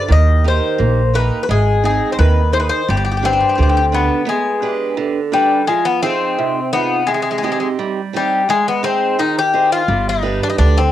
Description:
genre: greek folk, Greek bouzouki band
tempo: 86 BPM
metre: 2/4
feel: straight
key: G phrygian dominant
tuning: A4 = 438 Hz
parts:
  - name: Greek bouzouki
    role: melody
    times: 0.0-10.9 s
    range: G3 to Eb5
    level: -16 LUFS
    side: left 5 dB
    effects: none
  - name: picked old ladder-braced acoustic guitar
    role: accompaniment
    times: 0.0-10.9 s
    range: C3 to C5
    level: -20 LUFS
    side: right 7 dB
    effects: none
  - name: upright bass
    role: bass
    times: 0.1-4.1, 9.9-10.9 s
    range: G1 to Eb2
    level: -15 LUFS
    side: right 1 dB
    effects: none
room: moderate studio reverb, RT60 0.7 s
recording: home recording on cassette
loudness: -14 LUFS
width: side -12 dB against mid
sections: 0.0-4.3 A section; 4.3-10.9 A section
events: none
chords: 0.1 Eb; 1.5 Ab; 2.9 G; 5.7 Fm7; 7.1 Cm; 8.5 Ab; 9.9 G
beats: | 0.10 0.79 | 1.49 2.19 | 2.89 3.59 | 4.29 4.99 | 5.69 6.39 | 7.08 7.78 | 8.48 9.18 | 9.88 10.58

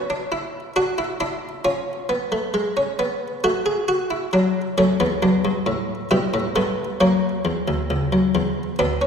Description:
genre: classical, baroque-style 4-part fugue for harpsichord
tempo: 67 BPM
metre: 3/4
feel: straight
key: B minor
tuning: A4 = 441 Hz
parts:
  - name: buff-stop harpsichord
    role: solo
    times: 0.0-9.1 s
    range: C#2 to G#4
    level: -19 LUFS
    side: equal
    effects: none
room: wet concert hall reverb, RT60 2.0 s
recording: recorded in a church or concert hall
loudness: -19 LUFS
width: side -6 dB against mid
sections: 0.0-4.3 A section; 4.3-9.1 B section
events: none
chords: 0.0 F#5; 0.8 Dadd9; 1.7 C#7; 3.4 F#m/A; 4.3 Bm; 6.1 G69; 7.0 F#7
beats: 0.77 | 1.65 2.54 3.44 | 4.33 5.22 6.12 | 7.01 7.91 8.80

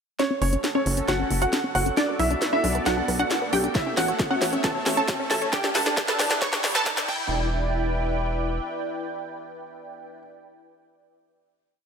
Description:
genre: uplifting trance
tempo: 135 BPM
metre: 4/4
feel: straight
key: E dorian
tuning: A4 = 440 Hz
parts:
  - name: wide unison pluck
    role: melody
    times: 0.2-10.2 s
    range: C#4 to C#6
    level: -27 LUFS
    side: right 1 dB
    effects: phaser, sidechain pumping, digital delay
  - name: bright grand piano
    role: second line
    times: 0.2-10.2 s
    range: C#5 to C#6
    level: -31 LUFS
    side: right 2 dB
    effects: sidechain pumping, low-pass filter, digital delay
  - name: lush unison pad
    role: sustained chords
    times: 0.2-10.2 s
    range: A3 to G5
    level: -31 LUFS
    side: equal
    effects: chorus, phaser, sidechain pumping
  - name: wide unison pluck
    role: arpeggios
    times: 0.2-7.5 s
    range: C#4 to C#5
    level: -30 LUFS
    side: left 2 dB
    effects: sidechain pumping, digital delay
  - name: house drum kit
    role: drums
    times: 0.2-7.2 s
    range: crash cymbal, hi-hat, snare drum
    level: -27 LUFS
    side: equal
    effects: none
  - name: riser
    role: sound effects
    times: 2.1-7.3 s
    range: none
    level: -36 LUFS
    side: equal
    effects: none
  - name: tight sequencer bass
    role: bass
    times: 0.4-8.6 s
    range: E1 to B1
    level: -28 LUFS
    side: equal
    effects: sidechain pumping
  - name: electronic kick drum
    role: drums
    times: 3.8-7.2 s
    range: none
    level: -29 LUFS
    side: equal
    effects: none
room: moderate lush hall reverb, RT60 2.0 s, digital ambience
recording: high-pass filter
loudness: -22 LUFS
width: side -6 dB against mid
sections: 0.2-7.3 build; 7.3-10.9 final hit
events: build-up 0.2-7.3; drum fill 0.2-7.3; filter sweep on synth pluck 0.2-7.3; filter sweep on synth arpeggio sound 0.2-7.3; filter sweep on grand piano 0.2-7.3; filter sweep 0.2-7.3; riser 2.1-7.3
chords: 0.2 F#m; 2.0 Bm7; 3.8 A; 5.5 Em7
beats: | 0.20 0.64 1.08 1.53 | 1.97 2.42 2.86 3.31 | 3.75 4.20 4.64 5.08 | 5.53 5.97 6.42 6.86 | 7.31 7.75 8.20 8.64 | 9.08 9.53 9.97

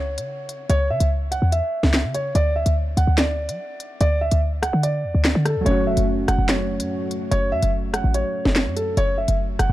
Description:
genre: hip hop, drill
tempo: 145 BPM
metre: 4/4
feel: half-time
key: F# minor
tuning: A4 = 441 Hz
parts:
  - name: dark grand piano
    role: melody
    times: 0.0-9.7 s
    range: A4 to F#5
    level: -24 LUFS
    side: right 1 dB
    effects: ping-pong delay
  - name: short 808-style bass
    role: bass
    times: 0.0-9.7 s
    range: E1 to F#3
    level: -21 LUFS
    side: equal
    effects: none
  - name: drill drum kit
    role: drums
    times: 0.2-9.7 s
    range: handclaps, hi-hat, rim click, snare drum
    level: -24 LUFS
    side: equal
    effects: none
  - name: warbly lo-fi synth keys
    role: accompaniment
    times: 5.6-9.7 s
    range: F#3 to F#4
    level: -26 LUFS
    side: right 1 dB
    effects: chorus
room: digital ambience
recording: dark, warm production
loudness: -18 LUFS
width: side -15 dB against mid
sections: 0.0-9.7 A section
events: none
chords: 0.0 C#m; 2.4 N.C.; 5.7 F#m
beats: 0.28 | 0.70 1.11 1.52 1.94 | 2.35 2.77 3.18 3.59 | 4.01 4.42 4.83 5.25 | 5.66 6.08 6.49 6.90 | 7.32 7.73 8.14 8.56 | 8.97 9.38

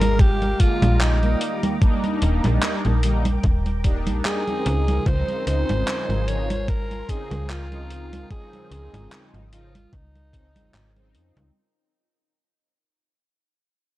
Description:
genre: vaporwave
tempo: 74 BPM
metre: 4/4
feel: swing 55% on 16ths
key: unclear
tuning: A4 = 440 Hz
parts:
  - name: raspy alto saxophone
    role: melody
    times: 0.0-11.1 s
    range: Eb4 to Db5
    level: -28 LUFS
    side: equal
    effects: vintage 12-bit sampler grit, tape echo
  - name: soft string machine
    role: sustained chords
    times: 0.0-11.5 s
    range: Ab3 to Eb6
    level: -35 LUFS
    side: equal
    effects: ensemble chorus
  - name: slap-like FM bass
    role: bass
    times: 0.0-11.5 s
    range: Eb1 to F2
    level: -22 LUFS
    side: equal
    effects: none
  - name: gated 80s digital drum machine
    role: drums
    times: 0.0-11.5 s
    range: congas, handclaps, hi-hat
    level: -27 LUFS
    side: right 1 dB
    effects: gated reverb
  - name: electronic kick drum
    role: drums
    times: 0.2-10.5 s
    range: none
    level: -19 LUFS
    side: equal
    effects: none
  - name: mellow synth brass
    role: accompaniment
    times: 0.6-11.5 s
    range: Db3 to F4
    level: -29 LUFS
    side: equal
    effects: phaser, analog chorus, tape echo
room: digital ambience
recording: dark, warm production, cassette tape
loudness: -19 LUFS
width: side -16 dB against mid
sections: 0.0-11.6 A section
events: fade-out 0.0-11.6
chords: 0.0 Bb7; 1.4 Ebmaj7; 4.7 Dbmaj9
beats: 0.20 1.01 | 1.82 2.63 3.44 4.25 | 5.06 5.87 6.68 7.50 | 8.31 9.12 9.93 10.74

